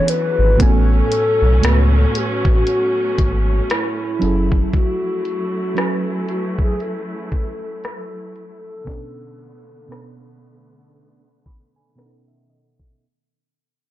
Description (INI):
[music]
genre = contemporary R&B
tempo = 58 BPM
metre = 4/4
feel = swing 58% on 16ths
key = F# minor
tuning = A4 = 441 Hz
[part]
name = hollow clarinet-like synth lead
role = melody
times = 0.0-12.0 s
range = E4 to C#5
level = -22 LUFS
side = left 1 dB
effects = chorus
[part]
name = mellow FM electric piano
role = accompaniment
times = 0.0-13.0 s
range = A2 to B5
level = -24 LUFS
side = right 3 dB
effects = chorus
[part]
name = warm studio string section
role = sustained chords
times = 0.0-13.0 s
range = D3 to E4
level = -28 LUFS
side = equal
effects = none
[part]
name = smooth R&B drum kit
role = drums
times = 0.1-13.0 s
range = hi-hat, kick drum, rim click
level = -20 LUFS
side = equal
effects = none
[part]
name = saturated sub bass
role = bass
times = 0.4-4.6 s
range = F#1 to C#2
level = -16 LUFS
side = equal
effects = none
[sound]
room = light reverb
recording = dark, warm production, low-pass filter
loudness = -15 LUFS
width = side -14 dB against mid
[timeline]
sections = 0.0-13.0 A section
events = fade-out 0.0-13.0; filter sweep 0.0-13.0; FM electric piano fill 10.9-13.0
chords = 0.0 E13; 0.6 Amaj13; 4.2 F#m7; 8.9 Bm9; 12.0 B9